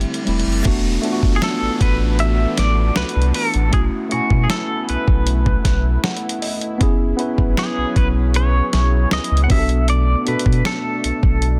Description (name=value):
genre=contemporary R&B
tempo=78 BPM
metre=4/4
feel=straight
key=unclear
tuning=A4 = 440 Hz
part: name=mellow tine electric piano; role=accompaniment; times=0.0-11.6 s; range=G3 to G#5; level=-26 LUFS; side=equal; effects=none
part: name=warm analog pad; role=sustained chords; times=0.0-11.6 s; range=B2 to B4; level=-32 LUFS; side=equal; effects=chorus, sidechain pumping
part: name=warm sub bass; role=bass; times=0.0-11.6 s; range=E1 to B2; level=-20 LUFS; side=equal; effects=none
part: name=dusty soul sampler-style drum kit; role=drums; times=0.0-11.6 s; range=crash cymbal, hi-hat, kick drum, snare drum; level=-22 LUFS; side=equal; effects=soft clipping on snare
part: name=reverse cymbal and downlifter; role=sound effects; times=0.0-6.8 s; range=none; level=-35 LUFS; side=equal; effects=none
part: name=clean electric guitar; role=melody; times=1.4-11.6 s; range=F#4 to F#5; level=-26 LUFS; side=equal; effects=tremolo, delay
room=little or no reverb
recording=dense, heavily limited modern master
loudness=-18 LUFS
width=mono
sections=0.7-11.6 A section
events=break 0.0-0.7; reverse cymbal 0.0-0.7; tine electric piano fill 5.7-6.8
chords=0.0 D9sus4; 0.7 E9sus4; 3.7 B9sus4; 6.8 F#9sus4; 9.5 Bm7